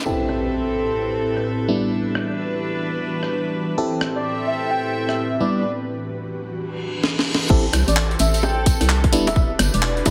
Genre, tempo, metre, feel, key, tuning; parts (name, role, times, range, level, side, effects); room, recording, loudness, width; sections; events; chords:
UK garage, two-step garage; 129 BPM; 4/4; swing 63% on 16ths; A minor; A4 = 440 Hz
ethereal airy pad; sustained chords; 0.2-10.1 s; A2 to B4; -32 LUFS; equal; ensemble chorus, built-in reverb, sidechain pumping
rich chamber string section; texture; 0.0-10.1 s; C4 to G5; -30 LUFS; equal; sidechain pumping
FM electric piano; stabs; 0.1-10.1 s; G3 to A4; -26 LUFS; equal; chorus, phaser, low-pass filter, digital delay
impact and reverse cymbal; sound effects; 0.1-1.9, 6.8-7.5 s; -33 LUFS; equal
breakbeat sampler-style drum kit; drums; 0.3-10.1 s; bongos, crash cymbal, handclaps, hi-hat, rim click, snare drum; -26 LUFS; equal; low-pass filter on hats, low-pass filter on perc, low-pass filter on snare, low-pass filter on cymbals, low-pass filter on room
airy dreamy lead; melody; 4.2-10.1 s; B4 to G5; -29 LUFS; equal; chorus, digital delay
hollow knocking FM bass; bass; 7.5-10.1 s; E1 to C2; -22 LUFS; equal
electronic kick drum; drums; 7.5-10.1 s; -20 LUFS; equal
tambourine; percussion; 7.5-10.1 s; -33 LUFS; equal
light reverb; heavily compressed radio sound, multiband compression; -21 LUFS; mono
0.1-7.5 A section; 7.5-10.1 B section
impact 0.1-1.9; filter sweep on drum 0.1-7.5; filter sweep on FM electric piano 0.1-7.5; reverse cymbal 6.8-7.5; drum fill 7.0-7.5; drop 7.5-10.1
0.1 Am7; 1.7 Em7; 3.8 Am7; 5.4 Em7; 7.5 Am7; 9.1 Em7